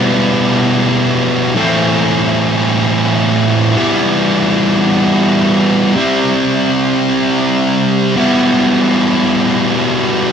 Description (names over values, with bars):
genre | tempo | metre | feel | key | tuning
rock | 54 BPM (dotted quarters) | 6/8 | straight | E minor | A4 = 443 Hz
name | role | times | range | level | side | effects
thick fuzz guitar | solo | 0.0-10.3 s | A2 to E4 | -11 LUFS | equal | distortion
room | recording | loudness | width
moderate studio reverb, RT60 0.8 s | band playing live in one room | -11 LUFS | side -7 dB against mid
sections
0.0-10.3 A section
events
none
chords
0.0 Em/B; 1.6 Am; 3.8 Em; 6.0 C; 8.2 Em/B